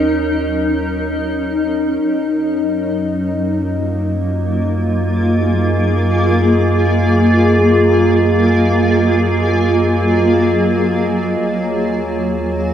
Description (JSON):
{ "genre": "ambient", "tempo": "free time", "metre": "none", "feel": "none", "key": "unclear", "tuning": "A4 = 440 Hz", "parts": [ { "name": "granular cloud pad", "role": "sustained chords", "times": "0.0-12.7 s", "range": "Gb3 to Bb4", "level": "-14 LUFS", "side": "equal", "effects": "built-in reverb" }, { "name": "warm sub bass", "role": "bass", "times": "0.0-12.7 s", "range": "Eb2 to Gb2", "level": "-20 LUFS", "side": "equal", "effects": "none" }, { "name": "glass harmonica", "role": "texture", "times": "0.0-12.7 s", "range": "Db5 to Eb5", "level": "-26 LUFS", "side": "right 2 dB", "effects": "none" } ], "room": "wet huge ambient reverb, RT60 7.7 s", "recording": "dark, warm production", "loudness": "-13 LUFS", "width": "side -9 dB against mid", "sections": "0.0-12.7 A section", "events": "fade-in on sub bass 0.0-12.7; fade-in on glass harmonica 0.0-12.7", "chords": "0.0 Ebm7; 2.0 Gbmaj9; 11.4 Ebm7", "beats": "free time" }